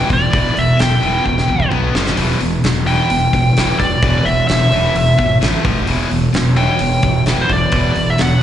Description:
hard rock; 130 BPM; 4/4; straight; E minor; A4 = 440 Hz
biting lead guitar; melody; 0.0-8.4 s; C5 to G5; -18 LUFS; equal; overdrive, slapback echo, analog delay
distorted electric guitar; riff; 0.0-8.4 s; E2 to B3; -20 LUFS; right 6 dB; distortion, slapback echo
high-gain distorted guitar; riff; 0.0-8.4 s; E2 to B3; -20 LUFS; left 6 dB; distortion, slapback echo
fuzz fingered electric bass; bass; 0.0-8.4 s; E1 to C2; -19 LUFS; equal; overdrive
big rock drum kit; drums; 0.1-8.3 s; hi-hat, kick drum, snare drum; -19 LUFS; equal
sweeping resonant pad; sustained chords; 2.2-8.4 s; E3 to B4; -30 LUFS; equal; chorus, phaser
studio ambience; live gig heard through the venue's PA, recital hall reverb, nothing above 10.9 kHz; -12 LUFS; side -10 dB against mid
0.0-8.4 A section
drum fill 1.3-2.2
0.0 Em; 1.7 B5; 2.0 F5; 2.2 Em; 5.4 A5; 5.7 F5; 5.9 Em

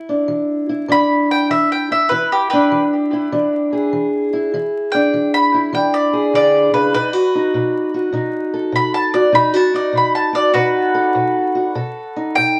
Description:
acoustic country blues, solo or duo; 100 BPM; 4/4; swing 66% on 8ths; E mixolydian; A4 = 440 Hz
fingerpicked steel-string acoustic guitar; accompaniment; 0.0-12.6 s; B2 to A4; -20 LUFS; equal
mandolin; melody; 0.9-12.6 s; F#4 to B5; -19 LUFS; equal; analog delay
moderate studio reverb, RT60 0.5 s; worn, warbling old tape, cassette tape, vinyl crackle, warbly pitch drift; -17 LUFS; mono
0.0-12.6 A section
0.0 E7; 6.9 B7

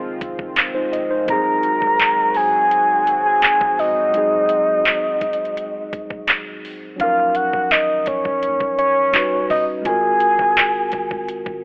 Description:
contemporary R&B; 84 BPM; 4/4; straight; A4 = 439 Hz
mellow tine electric piano; accompaniment; 0.0-11.6 s; F3 to Eb5; -28 LUFS; equal
warm analog pad; sustained chords; 0.0-7.0 s; Eb3 to Gb4; -33 LUFS; equal; chorus, sidechain pumping
soft 808-style bass; bass; 0.0-11.6 s; Db1 to Eb2; -50 LUFS; equal
smooth R&B drum kit; drums; 0.2-11.6 s; handclaps, hi-hat, kick drum; -23 LUFS; equal
soft octave-layered synth lead; melody; 1.3-11.2 s; Db5 to Bb5; -19 LUFS; equal; chorus, digital delay
light reverb; telephone sound; -18 LUFS; mono
0.0-7.0 A section; 7.0-11.6 B section
0.0 Fm7; 1.3 Ab7/Eb; 7.0 Ebm9; 9.1 Eb7alt; 9.9 Ab13

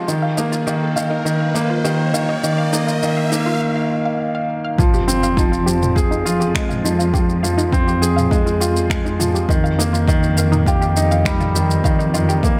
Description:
piano and strings electronica; 102 BPM; 4/4; straight; A4 = 441 Hz
analog pluck; arpeggios; 0.0-12.4 s; Eb4 to F5; -29 LUFS; equal; chorus, phaser, sidechain pumping, tape echo
felt-muted upright piano; riff; 0.0-12.6 s; Eb3 to Ab4; -20 LUFS; equal; tape echo
riser and impact; sound effects; 0.0-7.1 s; -29 LUFS; equal
deep house drum kit; drums; 0.1-12.6 s; finger snaps, shaker, toms; -28 LUFS; equal; high-pass filter on perc, high-pass filter on toms, high-pass filter on snare
dark symphonic cello section; bass; 4.8-12.6 s; F2; -23 LUFS; equal; sidechain pumping
electronic kick drum; drums; 4.8-12.6 s; -21 LUFS; equal
moderate concert hall reverb, RT60 1.8 s; -18 LUFS; mono
0.0-4.8 A section; 4.8-12.6 B section
build-up 0.0-4.8; riser 0.0-3.6; break 3.6-4.8; drop 4.8-12.6; impact 4.8-7.1
0.1 Eb5; 4.8 Fm; 9.5 Eb/F

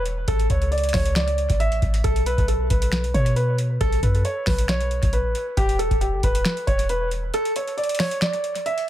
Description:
hip hop, trap; 136 BPM; 4/4; half-time; B minor; A4 = 438 Hz
clean 808-style bass; bass; 0.0-7.3 s; E1 to B2; -23 LUFS; equal
booming analog drum machine; drums; 0.1-8.9 s; finger snaps, hi-hat, kick drum, snare drum; -24 LUFS; equal
dark baby grand piano; melody; 0.3-8.8 s; G4 to E5; -24 LUFS; right 1 dB; dub echo
little or no reverb; echo-heavy mix; -19 LUFS; side -12 dB against mid
0.0-8.9 A section
kick muted 7.3-8.9
0.3 Asus4; 2.0 B5; 5.6 Em; 7.3 N.C.

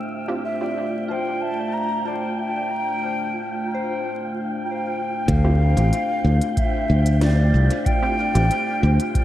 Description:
ambient dub; 93 BPM; 4/4; straight; D minor; A4 = 440 Hz
deep dark ambient pad; sustained chords; 0.0-9.2 s; A3 to C5; -29 LUFS; left 1 dB; chorus, built-in reverb
soft synth bell; arpeggios; 0.0-9.2 s; F4 to D5; -33 LUFS; left 3 dB; chorus, phaser, tape echo
wind-like tuned noise texture; texture; 0.0-9.2 s; F4 to G5; -33 LUFS; right 1 dB; built-in reverb, wide subtle chorus
filtered dub chord stab; stabs; 0.3-0.7, 5.4-8.5 s; C4 to G4; -31 LUFS; right 2 dB; chorus, cassette tape, dub echo
breathy mellow wooden flute; melody; 0.4-9.2 s; D5 to Bb5; -25 LUFS; equal; tape echo
modern bright fingered electric bass; bass; 5.3-9.0 s; A1 to D2; -16 LUFS; equal
electronic kick drum; drums; 5.3-9.2 s; -22 LUFS; equal
organic electronic drum kit; drums; 5.3-9.2 s; hi-hat, snare drum; -32 LUFS; left 1 dB; overdrive, low-pass filter on hats, low-pass filter on snare, low-pass filter on room, dub echo
moderate plate reverb, RT60 2.0 s, digital ambience; dreamy mix soaked in reverb, vinyl crackle; -19 LUFS; side -13 dB against mid
0.0-5.3 A section; 5.3-9.2 B section
0.0 Dm11

